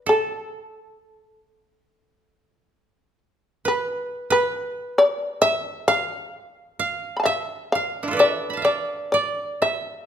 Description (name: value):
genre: japanese traditional, Japanese chamber music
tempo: 57-69 BPM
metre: 4/4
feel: rubato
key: E in sen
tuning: A4 = 438 Hz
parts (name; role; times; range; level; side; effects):
- koto; second line; 0.0-10.1 s; D4 to B5; -25 LUFS; right 4 dB; none
- shamisen; melody; 0.1-10.1 s; A4 to B5; -21 LUFS; left 2 dB; none
room: moderate recital hall reverb, RT60 1.3 s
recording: minimal, uncompressed stereo recording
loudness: -20 LUFS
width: side -9 dB against mid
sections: 0.0-10.1 A section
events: none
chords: none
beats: | 0.04 0.94 1.84 2.75 | 3.64 4.51 5.41 6.33 | 7.25 8.18 9.13